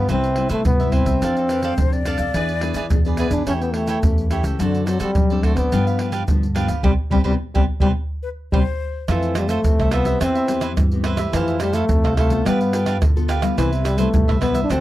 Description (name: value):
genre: samba and choro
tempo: 107 BPM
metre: 4/4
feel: straight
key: C major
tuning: A4 = 440 Hz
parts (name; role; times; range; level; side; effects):
- breathy trombone; melody; 0.0-14.8 s; D3 to D4; -22 LUFS; equal; none
- cavaquinho; accompaniment; 0.0-14.8 s; D4 to G5; -28 LUFS; right 6 dB; none
- nylon-string guitar; accompaniment; 0.0-14.8 s; F2 to A4; -25 LUFS; left 5 dB; none
- upright bass; bass; 0.0-14.8 s; C2 to F#3; -23 LUFS; equal; none
- egg shaker, surdo, pandeiro and tamborim; percussion; 0.1-14.8 s; none; -21 LUFS; right 1 dB; none
- breathy concert flute; second line; 1.5-3.0, 8.2-9.0 s; B4 to D5; -27 LUFS; left 7 dB; none
room: light reverb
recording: dry, close 1970s-style studio recording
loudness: -17 LUFS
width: side -15 dB against mid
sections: 0.0-9.1 A section; 9.1-14.8 B section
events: band accent 6.8-9.1; drum fill 8.7-9.1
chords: 0.1 Cmaj7; 1.2 F6; 2.3 E7; 3.5 A7/E; 4.6 D7/F#; 5.7 G7; 6.8 C5; 9.1 Fmaj7; 10.2 Cmaj7/E; 11.3 Fmaj9; 12.5 G9; 13.6 Cmaj7